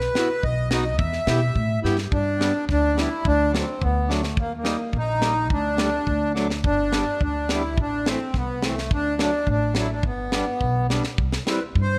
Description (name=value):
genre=alpine folk, alpine dance band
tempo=106 BPM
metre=2/4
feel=straight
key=G major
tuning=A4 = 439 Hz
part: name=accordion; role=melody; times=0.0-12.0 s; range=A3 to E5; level=-27 LUFS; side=equal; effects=none
part: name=upright bass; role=bass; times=0.0-12.0 s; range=G1 to B2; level=-28 LUFS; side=equal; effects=none
part: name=tight funk drum kit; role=drums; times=0.0-11.9 s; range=hi-hat, kick drum, snare drum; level=-28 LUFS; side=equal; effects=none
part: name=accordion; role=accompaniment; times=0.2-11.6 s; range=E3 to G4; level=-31 LUFS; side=equal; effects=none
room=moderate recital hall reverb, RT60 1.7 s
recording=none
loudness=-23 LUFS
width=mono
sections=0.0-2.1 A section; 2.1-11.2 B section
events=drum fill 1.8, 6.3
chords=0.4 B; 1.0 Em; 2.1 G; 3.2 D; 4.4 Eb; 5.5 Dsus4; 6.1 D; 6.6 G; 7.8 Am; 8.9 D; 10.0 G; 11.2 C